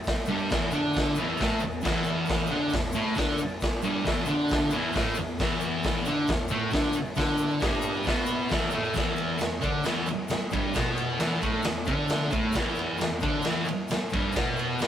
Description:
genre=garage rock duo or trio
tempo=135 BPM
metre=4/4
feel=straight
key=unclear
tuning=A4 = 440 Hz
part: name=tube shaker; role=percussion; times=0.0-14.9 s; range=none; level=-48 LUFS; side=left 5 dB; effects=none
part: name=raw garage drum kit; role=drums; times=0.1-14.9 s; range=crash cymbal, hi-hat, kick drum, ride cymbal, snare drum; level=-28 LUFS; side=equal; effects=none
part: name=thick fuzz guitar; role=riff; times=0.3-14.9 s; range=E2 to D4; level=-27 LUFS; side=equal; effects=distortion
room=moderate studio reverb, RT60 0.6 s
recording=rough rehearsal-room recording, tube saturation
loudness=-24 LUFS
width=side -10 dB against mid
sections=0.0-8.9 A section; 8.9-14.9 B section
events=none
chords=0.0 E5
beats=| 0.06 0.50 0.95 1.39 | 1.84 2.28 2.73 3.17 | 3.62 4.06 4.50 4.95 | 5.39 5.83 6.28 6.72 | 7.17 7.61 8.06 8.50 | 8.95 9.40 9.85 10.29 | 10.74 11.19 11.64 12.09 | 12.54 12.99 13.44 13.89 | 14.34 14.79

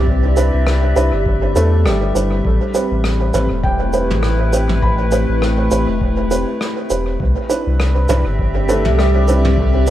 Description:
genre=ambient dub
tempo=101 BPM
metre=4/4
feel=swing 56% on 16ths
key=A minor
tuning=A4 = 440 Hz
part: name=warbly tape-like pad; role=sustained chords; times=0.0-9.9 s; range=A3 to E5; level=-22 LUFS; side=equal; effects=chorus, built-in reverb, phaser
part: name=felt-muted upright piano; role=arpeggios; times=0.0-9.9 s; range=G3 to B5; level=-24 LUFS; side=left 1 dB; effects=vintage 12-bit sampler grit, dub echo
part: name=warm sub bass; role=bass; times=0.0-9.9 s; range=E1 to E2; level=-16 LUFS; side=equal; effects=none
part: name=electronic kick drum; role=drums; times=0.1-9.7 s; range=none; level=-22 LUFS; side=equal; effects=none
part: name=dark upright piano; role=stabs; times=0.4-9.9 s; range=C4 to B4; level=-21 LUFS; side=right 2 dB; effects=dub echo
part: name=vintage brush drum kit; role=drums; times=0.4-9.9 s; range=rim click, shaker, toms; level=-26 LUFS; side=equal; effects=dub echo
room=light reverb, small room ambience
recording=none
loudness=-14 LUFS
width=side -12 dB against mid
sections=0.0-9.9 A section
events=none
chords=0.0 Cmaj7; 2.4 Am7; 7.2 Cmaj7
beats=| 0.07 0.67 1.26 1.85 | 2.45 3.04 3.64 4.23 | 4.83 5.42 6.01 6.61 | 7.20 7.79 8.39 8.98 | 9.58

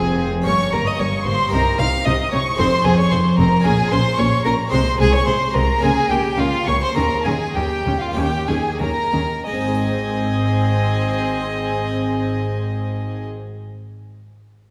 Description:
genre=classical, baroque-style concerto movement with solo episodes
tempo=89-113 BPM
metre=4/4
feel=straight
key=Ab major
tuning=A4 = 441 Hz
part: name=rich chamber violin section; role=melody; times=0.0-13.2 s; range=F5 to F6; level=-29 LUFS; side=equal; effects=none
part: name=rich violin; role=melody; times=0.0-13.2 s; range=F4 to F5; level=-25 LUFS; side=equal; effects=none
part: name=rich chamber violin section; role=second line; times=0.0-13.3 s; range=Ab4 to F6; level=-28 LUFS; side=equal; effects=none
part: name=harpsichord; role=accompaniment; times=0.0-13.5 s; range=F2 to Eb5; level=-27 LUFS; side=equal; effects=none
part: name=warm symphonic viola section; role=accompaniment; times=0.0-13.3 s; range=Ab3 to Eb4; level=-29 LUFS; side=equal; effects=none
part: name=clear chamber cello section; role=bass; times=0.0-13.2 s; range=F2 to Eb3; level=-27 LUFS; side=equal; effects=none
part: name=rich chamber double bass section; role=bass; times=0.0-13.3 s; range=F1 to Eb2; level=-26 LUFS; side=equal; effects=none
room=wet concert hall reverb, RT60 2.2 s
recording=heard from further back in the room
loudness=-19 LUFS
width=mono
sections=0.0-9.5 A section; 9.5-14.7 B section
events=slowing down 3.7-9.5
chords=0.5 Gdim; 1.5 Cm; 2.6 Fm; 3.7 Bbm; 4.7 Ab/C; 5.8 Bbm/Db; 7.0 Eb7sus4; 8.2 Eb7; 9.5 Ab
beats=| 0.47 1.00 1.53 2.06 | 2.59 3.12 3.65 4.18 | 4.72 5.27 5.82 6.39 | 6.97 7.56 8.17 8.80 | 9.47 10.14 10.80 11.47 | 12.14 12.81 13.47

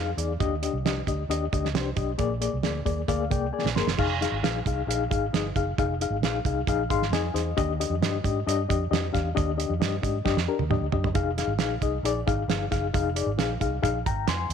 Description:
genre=uptempo 1960s-style soul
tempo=134 BPM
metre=4/4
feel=straight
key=unclear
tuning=A4 = 438 Hz
part: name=mellow reed electric piano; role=accompaniment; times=0.0-14.5 s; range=Bb2 to C6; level=-27 LUFS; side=left 9 dB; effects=fast tremolo
part: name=vintage muted fingered electric bass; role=bass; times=0.0-14.5 s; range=F1 to Ab2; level=-30 LUFS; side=right 1 dB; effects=none
part: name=cloth-damped thuddy drum kit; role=drums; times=0.2-14.5 s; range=crash cymbal, hi-hat, kick drum, snare drum, toms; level=-28 LUFS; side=right 6 dB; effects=none
room=light reverb, studio ambience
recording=1960s-style stereo with parts hard left and right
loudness=-24 LUFS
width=side -7 dB against mid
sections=0.0-4.0 A section; 4.0-14.5 A section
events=reed electric piano fill 2.6-4.0, 6.7-7.6; drum fill 3.5-4.0, 10.3-11.2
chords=0.4 Ebmaj7; 2.2 Bb7; 4.0 Fm7; 7.6 Ebmaj7; 11.2 Fm7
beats=| 0.40 0.85 1.30 1.75 | 2.19 2.64 3.09 3.54 | 3.99 4.44 4.89 5.33 | 5.78 6.23 6.68 7.13 | 7.58 8.02 8.47 8.92 | 9.37 9.81 10.26 10.71 | 11.16 11.60 12.05 12.50 | 12.95 13.39 13.84 14.29

